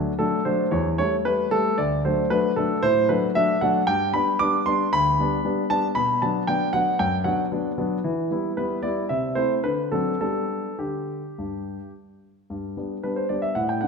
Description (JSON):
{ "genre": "classical-period piano sonatina", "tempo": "114 BPM", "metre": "4/4", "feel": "rubato", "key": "G major", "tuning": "A4 = 440 Hz", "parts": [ { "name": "warm concert grand piano", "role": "solo", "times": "0.0-13.9 s", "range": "D2 to D6", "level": "-21 LUFS", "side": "equal", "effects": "none" } ], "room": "wet recital hall reverb, RT60 1.5 s", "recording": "minimal, uncompressed stereo recording", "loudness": "-21 LUFS", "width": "side -5 dB against mid", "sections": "0.0-12.5 A section; 12.5-13.9 A section", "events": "none", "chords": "0.0 D; 0.7 A5/E; 1.8 D; 3.9 G; 6.0 Bm; 8.0 Em; 9.1 Am/C; 9.6 D7; 10.2 G" }